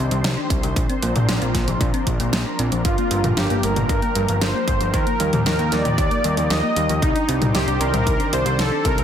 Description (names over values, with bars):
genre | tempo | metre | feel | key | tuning
synthwave | 115 BPM | 4/4 | straight | unclear | A4 = 440 Hz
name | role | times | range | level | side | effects
analog string pad | sustained chords | 0.0-9.0 s | Eb3 to D5 | -28 LUFS | equal | ensemble chorus, vintage 12-bit sampler grit, sidechain pumping
thumb-piano-like synth pluck | arpeggios | 0.0-9.0 s | F3 to Eb4 | -27 LUFS | left 2 dB | chorus, tape echo
fat analog bass | bass | 0.0-9.0 s | G1 to Eb2 | -23 LUFS | equal | tube saturation
pop drum kit | drums | 0.1-9.0 s | hi-hat, snare drum, toms | -25 LUFS | equal | none
electronic kick drum | drums | 0.5-9.0 s | none | -23 LUFS | equal | none
soft supersaw | melody | 2.8-9.0 s | Eb4 to Eb5 | -22 LUFS | equal | none
room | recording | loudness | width
light reverb, digital ambience | dense, heavily limited modern master | -18 LUFS | side -9 dB against mid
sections
0.0-9.0 A section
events
none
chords
0.0 Cmadd9; 0.8 Bbadd9; 2.9 Gm7; 4.9 Ebadd9; 7.0 Cmadd9